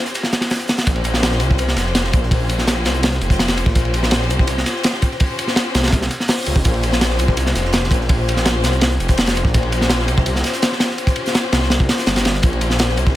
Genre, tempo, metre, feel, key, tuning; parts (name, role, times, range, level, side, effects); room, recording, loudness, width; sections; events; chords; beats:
drum and bass, jungle; 166 BPM; 4/4; straight; Bb dorian; A4 = 439 Hz
warm studio string section; sustained chords; 0.0-13.2 s; Db4 to C5; -23 LUFS; left 3 dB
crunchy breakbeat drum kit; drums; 0.1-13.2 s; hi-hat, snare drum; -32 LUFS; right 3 dB; high-pass filter on hats, high-pass filter on snare, high-pass filter on room
crunchy breakbeat drum kit; drums; 0.2-13.2 s; hi-hat, kick drum, ride cymbal, snare drum; -17 LUFS; equal
detuned saw bass; bass; 0.9-13.2 s; F1 to Db2; -19 LUFS; equal
studio reverb; -15 LUFS; side -14 dB against mid
0.9-13.2 A section
drop 0.9-13.2
0.0 Dbmaj7#11; 0.9 Bbm69
0.14 0.51 | 0.87 1.23 1.59 1.95 | 2.31 2.67 3.04 3.40 | 3.76 4.12 4.48 4.84 | 5.20 5.57 5.93 6.29 | 6.65 7.01 7.37 7.73 | 8.10 8.46 8.82 9.18 | 9.54 9.90 10.27 10.63 | 10.99 11.35 11.71 12.07 | 12.43 12.79 13.16